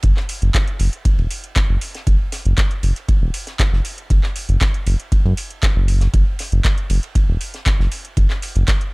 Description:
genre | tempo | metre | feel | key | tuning
acid house | 118 BPM | 4/4 | straight | unclear | A4 = 440 Hz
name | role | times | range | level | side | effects
round analog bass | bass | 0.0-8.6 s | E1 to F#2 | -16 LUFS | equal | sidechain pumping
booming analog drum machine | drums | 0.0-8.9 s | handclaps, hi-hat | -26 LUFS | equal | none
electronic kick drum | drums | 0.0-8.8 s | none | -17 LUFS | equal | none
tight funk drum kit | drums | 0.0-8.8 s | ride cymbal, snare drum | -35 LUFS | right 1 dB | high-pass filter on cymbals, high-pass filter on snare, high-pass filter on room
room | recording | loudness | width
little or no reverb | dry, gritty hardware recording | -16 LUFS | side -30 dB against mid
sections
0.0-8.9 A section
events
none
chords
none

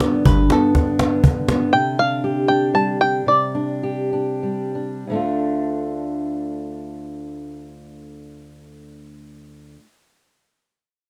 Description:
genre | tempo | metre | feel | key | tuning
acoustic folk duo or small band | 88-122 BPM | 3/4 | straight | D dorian | A4 = 440 Hz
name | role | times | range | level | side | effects
bluegrass banjo | melody | 0.0-4.4 s | A4 to A5 | -22 LUFS | equal | none
fingerpicked steel-string acoustic guitar | accompaniment | 0.0-9.8 s | D2 to G4 | -24 LUFS | equal | none
cajon | percussion | 0.0-1.7 s | none | -20 LUFS | equal | none
warm sub bass | bass | 0.3-0.5 s | G1 | -21 LUFS | equal | none
room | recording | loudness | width
light reverb | dry, close 1970s-style studio recording | -20 LUFS | mono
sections
0.0-5.1 A section; 5.1-9.2 B section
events
slowing down 1.7-5.1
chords
0.0 G; 1.7 Csus2; 5.1 Dm

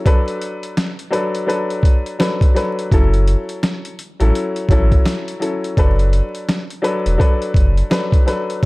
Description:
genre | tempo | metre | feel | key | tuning
hip hop, boom-bap hip-hop | 84 BPM | 4/4 | swing 60% on 16ths | unclear | A4 = 444 Hz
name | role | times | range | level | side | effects
warm upright piano | accompaniment | 0.0-8.7 s | F#3 to B4 | -20 LUFS | left 2 dB | cassette tape, high-pass filter, low-pass filter
boom bap sampler-style drum kit | drums | 0.1-8.7 s | hi-hat, kick drum, snare drum | -16 LUFS | equal | none
warm sub bass | bass | 2.9-8.7 s | E1 to A1 | -15 LUFS | equal | none
room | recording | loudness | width
digital ambience | dark, warm production, vinyl crackle | -15 LUFS | side -23 dB against mid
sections
0.0-8.7 A section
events
break 0.1-2.9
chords
0.1 Bm7/F#; 2.9 F#m7; 5.8 E9sus4 (rootless)

